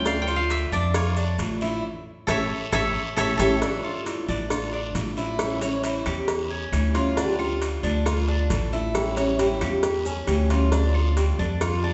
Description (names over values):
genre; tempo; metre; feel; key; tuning
latin, Cuban son and guajira; 135 BPM; 4/4; straight; D harmonic minor; A4 = 440 Hz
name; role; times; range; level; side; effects
koto; melody; 0.0-5.3 s; A4 to G5; -30 LUFS; equal; none
picked steel-string acoustic guitar; accompaniment; 0.0-11.7 s; D3 to F4; -33 LUFS; equal; none
Cuban tres; arpeggios; 0.0-11.9 s; C#4 to C#5; -32 LUFS; equal; none
upright bass; bass; 0.0-11.9 s; A1 to F2; -28 LUFS; equal; none
cowbell; percussion; 0.1-11.8 s; none; -34 LUFS; equal; none
guiro; percussion; 0.1-11.9 s; none; -41 LUFS; equal; none
maracas; percussion; 0.1-11.8 s; none; -47 LUFS; equal; none
claves; percussion; 0.3-11.8 s; none; -41 LUFS; equal; none
nylon-string guitar; second line; 3.6-11.9 s; C#4 to A4; -33 LUFS; equal; none
room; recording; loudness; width
wet recital hall reverb, RT60 1.4 s; recorded in a church or concert hall, nothing above 8.0 kHz; -24 LUFS; mono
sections
0.0-3.6 A section; 3.6-11.9 B section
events
koto solo 0.0-3.6; band accent 1.8-3.6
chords
0.1 Dm; 1.8 A7; 3.6 Dm; 5.4 A7; 7.2 Dm; 8.9 A7; 10.7 Dm